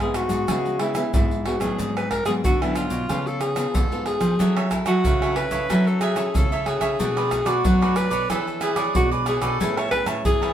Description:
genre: samba and choro.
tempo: 92 BPM.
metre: 4/4.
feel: straight.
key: unclear.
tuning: A4 = 440 Hz.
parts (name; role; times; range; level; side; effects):
breathy alto saxophone; melody; 0.0-10.5 s; E4 to C#5; -25 LUFS; equal; none.
nylon-string guitar; accompaniment; 0.0-10.5 s; G#2 to C#5; -29 LUFS; left 2 dB; none.
nylon-string guitar; bass; 0.0-10.5 s; G#2 to F#3; -26 LUFS; equal; none.
tube shaker, surdo, pandeiro and tamborim; percussion; 0.0-10.5 s; none; -25 LUFS; right 1 dB; none.
cavaquinho; accompaniment; 4.4-10.5 s; D4 to A5; -27 LUFS; right 4 dB; none.
room: moderate studio reverb, RT60 0.8 s.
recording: band playing live in one room.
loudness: -20 LUFS.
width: side -10 dB against mid.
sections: 0.0-10.5 A section.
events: none.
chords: 0.0 C#m7; 1.8 G#m7b5; 3.1 C#7b13; 4.4 F#m7; 7.0 Bm7; 8.3 E6; 9.6 Amaj9.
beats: 0.49 1.14 | 1.79 2.44 3.09 3.74 | 4.40 5.05 5.70 6.35 | 7.00 7.65 8.30 8.95 | 9.60 10.25.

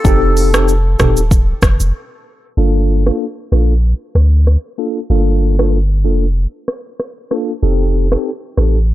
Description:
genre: afrobeats.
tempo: 95 BPM.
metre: 4/4.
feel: swing 55% on 16ths.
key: G minor.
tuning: A4 = 440 Hz.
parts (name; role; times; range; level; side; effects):
direct-recorded clean electric guitar; melody; 0.0-1.6 s; A4; -24 LUFS; left 1 dB; tape echo.
mellow tine electric piano; accompaniment; 0.0-8.8 s; Bb3 to A4; -18 LUFS; equal; medium stereo tremolo.
punchy sub bass; bass; 0.0-8.9 s; Eb1 to D2; -12 LUFS; equal; none.
afro-pop drum kit; drums; 0.0-8.7 s; hi-hat, kick drum, rim click, shaker, toms; -15 LUFS; equal; none.
room: digital ambience.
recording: dry, gritty hardware recording, low-pass filter.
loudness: -12 LUFS.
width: side -15 dB against mid.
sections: 0.0-2.6 A section; 2.6-8.9 B section.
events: break 1.9-2.6; filter sweep 2.6-8.9.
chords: 0.0 F7; 2.6 Gm7; 7.6 F7.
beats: | 0.05 0.68 1.31 1.94 | 2.57 3.21 3.84 4.47 | 5.10 5.73 6.36 7.00 | 7.63 8.26 8.89.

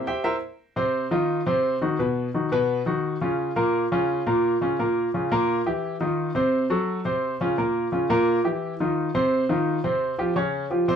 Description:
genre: jazz.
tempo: 172 BPM.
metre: 4/4.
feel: straight.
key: unclear.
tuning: A4 = 440 Hz.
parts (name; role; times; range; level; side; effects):
warm grand piano; solo; 0.0-11.0 s; Bb2 to G5; -22 LUFS; equal; none.
room: wet studio ambience, RT60 0.4 s.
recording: band playing live in one room.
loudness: -22 LUFS.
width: side -7 dB against mid.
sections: 0.6-11.0 A section.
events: none.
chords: 0.0 C7; 0.6 F5; 2.0 B; 3.4 Bbm; 5.5 Edim/Bb; 6.2 F5; 6.9 Dbmaj7#5/C; 7.6 Bbm; 8.3 Edim/Bb; 9.0 F5; 10.4 Dbmaj7#11.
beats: 0.24 | 0.59 0.94 1.29 1.64 | 1.99 2.34 2.69 3.04 | 3.39 3.74 4.09 4.44 | 4.79 5.14 5.49 5.83 | 6.18 6.53 6.88 7.23 | 7.58 7.92 8.27 8.62 | 8.97 9.32 9.66 10.01 | 10.36 10.71.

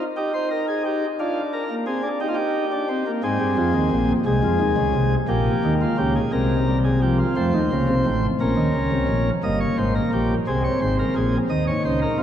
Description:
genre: classical, baroque-style 3-part fugue for pipe organ.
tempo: 58 BPM (dotted quarters).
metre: 6/8.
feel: straight.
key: Ab major.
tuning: A4 = 438 Hz.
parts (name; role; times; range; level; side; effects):
chamber organ, principal chorus; solo; 0.0-12.2 s; G1 to Eb5; -19 LUFS; equal; none.
room: wet cathedral reverb, RT60 5.5 s.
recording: dark, warm production.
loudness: -19 LUFS.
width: side -10 dB against mid.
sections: 0.0-7.4 A section; 7.4-12.2 B section.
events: none.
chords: 0.2 Eb; 1.2 Bb7/D; 2.2 Eb; 3.2 Ab; 4.3 Ab/C; 5.3 Eb7/Bb; 6.3 Ab/C; 7.4 F7; 8.4 Bbm; 9.4 Eb7/G; 10.5 Ab; 11.5 Dbmaj7sus2.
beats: 0.17 | 1.19 2.21 | 3.24 4.27 | 5.30 6.34 | 7.38 8.41 | 9.45 10.48 | 11.51.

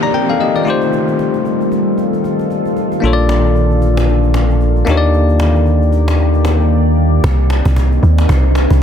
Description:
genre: amapiano.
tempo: 114 BPM.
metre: 4/4.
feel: swing 58% on 16ths.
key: C dorian.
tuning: A4 = 440 Hz.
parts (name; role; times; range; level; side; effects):
bell-like tine electric piano; accompaniment; 0.0-7.3 s; A3 to Bb5; -17 LUFS; left 5 dB; none.
deep dark ambient pad; sustained chords; 0.0-8.8 s; D3 to D5; -18 LUFS; equal; chorus, built-in reverb.
cajon; drums; 0.0-8.8 s; none; -26 LUFS; equal; none.
downlifter; sound effects; 0.0-3.0 s; none; -25 LUFS; right 1 dB; none.
round analog bass; bass; 3.0-7.2 s; Bb1 to Eb2; -12 LUFS; equal; none.
deep log drum bass; bass; 7.2-8.8 s; C2 to Eb2; -10 LUFS; equal; none.
room: digital ambience.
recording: dense, heavily limited modern master.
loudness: -11 LUFS.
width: side -8 dB against mid.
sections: 0.0-7.2 A section; 7.2-8.8 B section.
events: silent gap 6.7-7.2; drop 7.2-8.8.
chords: 0.0 Cm9; 0.7 F9; 3.0 Bbmaj7; 4.9 Ebmaj7; 7.2 Cm9.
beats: 0.40 | 0.92 1.45 1.98 2.50 | 3.03 3.56 4.08 4.61 | 5.13 5.66 6.19 6.71 | 7.24 7.77 8.29 8.82.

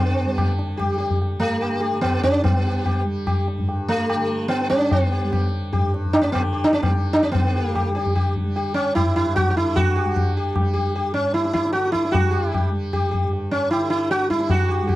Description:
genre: indian classical, Hindustani.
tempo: 149 BPM.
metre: 3/4.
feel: straight.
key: G raga yaman.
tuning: A4 = 444 Hz.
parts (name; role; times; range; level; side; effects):
sitar; melody; 0.0-15.0 s; A3 to G4; -21 LUFS; equal; none.
tanpura; drone; 0.0-15.0 s; G2 to G3; -29 LUFS; right 1 dB; stereo widening.
tabla; percussion; 0.4-15.0 s; none; -22 LUFS; left 1 dB; none.
room: light reverb.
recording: dry, close 1970s-style studio recording.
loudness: -19 LUFS.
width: side -16 dB against mid.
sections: 0.0-7.3 A section; 7.3-15.0 B section.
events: speeding up 0.0-15.0.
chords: none.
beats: 0.37 0.78 | 1.20 1.61 2.03 | 2.44 2.86 3.27 | 3.68 4.09 4.50 | 4.91 5.32 5.72 | 6.13 6.54 6.94 | 7.35 7.75 8.15 | 8.56 8.96 9.36 | 9.76 10.16 10.55 | 10.95 11.35 11.74 | 12.14 12.53 12.93 | 13.32 13.71 14.10 | 14.49 14.88.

